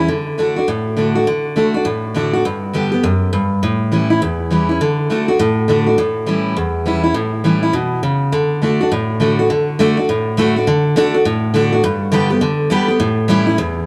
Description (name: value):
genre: rock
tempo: 204 BPM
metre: 4/4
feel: swing 63% on 8ths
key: D major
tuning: A4 = 441 Hz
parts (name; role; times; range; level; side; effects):
- picked steel-string acoustic guitar; solo; 0.0-13.9 s; E2 to G4; -16 LUFS; equal; analog delay
room: moderate studio reverb, RT60 0.9 s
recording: none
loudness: -16 LUFS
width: mono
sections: 0.1-9.5 A section; 9.5-13.9 B section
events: none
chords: 0.1 D; 2.4 G; 3.6 A7; 4.8 D; 6.0 A7; 8.3 D; 11.8 G; 13.0 A7